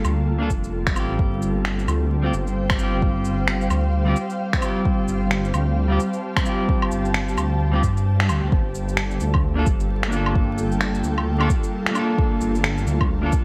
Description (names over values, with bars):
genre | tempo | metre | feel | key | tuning
future garage | 131 BPM | 4/4 | swing 60% on 16ths | G minor | A4 = 435 Hz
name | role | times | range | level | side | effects
clean electric guitar | accompaniment | 0.0-13.3 s | G3 to A4 | -28 LUFS | equal | sidechain pumping, digital delay
ethereal airy pad | sustained chords | 0.0-13.4 s | G3 to A5 | -30 LUFS | equal | ensemble chorus, built-in reverb, sidechain pumping
dark detuned saw bass | bass | 0.0-13.3 s | F1 to G2 | -25 LUFS | equal | sidechain pumping
electronic shaker, woodblock and finger snaps | drums | 0.0-13.4 s | none | -28 LUFS | equal | gated reverb
electronic kick drum | drums | 0.5-13.4 s | none | -24 LUFS | equal | overdrive
drifting glass-harmonics texture | texture | 2.1-8.5 s | C4 to C5 | -39 LUFS | equal | none
room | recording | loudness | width
light reverb, digital ambience | bright 1980s-style digital production, vinyl crackle | -22 LUFS | mono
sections
0.0-8.5 A section; 8.5-13.4 B section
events
kick drops out 8.1-8.5; band accent 8.2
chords
0.0 Gm7; 1.2 Csus4/G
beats
0.27 0.73 | 1.19 1.65 2.10 2.56 | 3.02 3.48 3.94 4.39 | 4.85 5.31 5.77 6.23 | 6.68 7.14 7.60 8.06 | 8.52 8.97 9.43 9.89 | 10.35 10.81 11.26 11.72 | 12.18 12.64 13.10